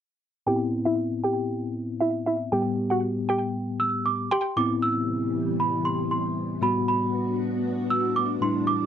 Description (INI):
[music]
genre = pop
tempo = 117 BPM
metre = 4/4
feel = straight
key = unclear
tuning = A4 = 440 Hz
[part]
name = mallet-like synth pluck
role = melody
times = 0.5-4.4 s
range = E4 to G5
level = -26 LUFS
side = equal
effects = chorus, slapback echo
[part]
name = bell-like tine electric piano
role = accompaniment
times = 0.5-8.9 s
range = A2 to G4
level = -27 LUFS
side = left 2 dB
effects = medium stereo tremolo
[part]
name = small celesta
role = melody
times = 3.8-8.9 s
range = B5 to E6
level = -26 LUFS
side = right 3 dB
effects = slapback echo
[part]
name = soft string machine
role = sustained chords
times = 4.9-8.9 s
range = A2 to F#4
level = -30 LUFS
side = equal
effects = phaser, ensemble chorus
[sound]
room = light reverb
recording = dry, close 1970s-style studio recording, low-pass filter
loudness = -23 LUFS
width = side -9 dB against mid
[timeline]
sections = 0.5-4.6 A section; 4.6-8.9 B section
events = filter sweep 0.5-4.6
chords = 0.5 Cmaj7/A; 2.5 G/A; 4.3 N.C.; 4.6 Cmaj7/A; 6.6 Gmaj7/A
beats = | 0.47 0.98 1.49 2.01 | 2.52 3.03 3.55 4.06 | 4.57 5.08 5.60 6.11 | 6.62 7.13 7.65 8.16 | 8.67